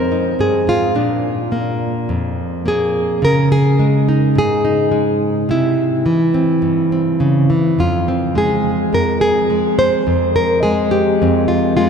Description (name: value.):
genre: folk, solo fingerstyle acoustic guitar.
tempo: 106 BPM.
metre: 4/4.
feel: straight.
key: F minor.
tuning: A4 = 440 Hz.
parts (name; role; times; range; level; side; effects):
nylon-string guitar; solo; 0.0-11.9 s; F2 to C5; -13 LUFS; equal; none.
room: wet cathedral reverb, RT60 5.5 s.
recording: in a vast, echoing space.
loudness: -13 LUFS.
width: side -6 dB against mid.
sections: 0.0-7.8 A section; 7.8-11.9 B section.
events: none.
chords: 0.0 Fm7; 1.0 Bb; 3.2 Dbsus2; 5.5 C; 7.8 Fm.